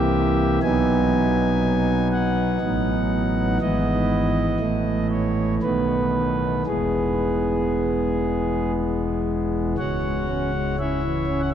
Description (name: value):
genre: classical, chorale-style piece for pipe organ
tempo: 60 BPM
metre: 3/4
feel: straight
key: E major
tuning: A4 = 440 Hz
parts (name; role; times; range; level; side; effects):
- pipe organ, principal; solo; 0.0-11.5 s; C#1 to G#5; -20 LUFS; equal; none
room: wet cathedral reverb, RT60 6.3 s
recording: dark, warm production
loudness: -20 LUFS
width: side -9 dB against mid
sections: 0.0-9.8 A section; 9.8-11.5 B section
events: none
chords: 0.0 C7; 0.6 B; 2.6 B7/A; 3.6 E/G#; 4.6 A; 5.6 B7; 6.7 E; 9.8 C#m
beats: | 0.63 1.62 2.62 | 3.62 4.61 5.62 | 6.66 7.72 8.76 | 9.78 10.79